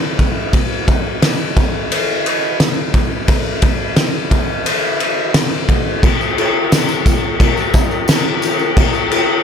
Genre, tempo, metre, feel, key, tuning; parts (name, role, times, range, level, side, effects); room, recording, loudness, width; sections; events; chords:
rock; 88 BPM; 4/4; straight
loose indie drum kit; drums; 0.2-9.3 s; crash cymbal, kick drum, ride cymbal, snare drum; -13 LUFS; equal
tambourine; percussion; 6.2-9.0 s; -32 LUFS; right 1 dB
moderate cathedral reverb, RT60 5.3 s; -13 LUFS; side -7 dB against mid
0.0-6.0 A section; 6.0-9.4 B section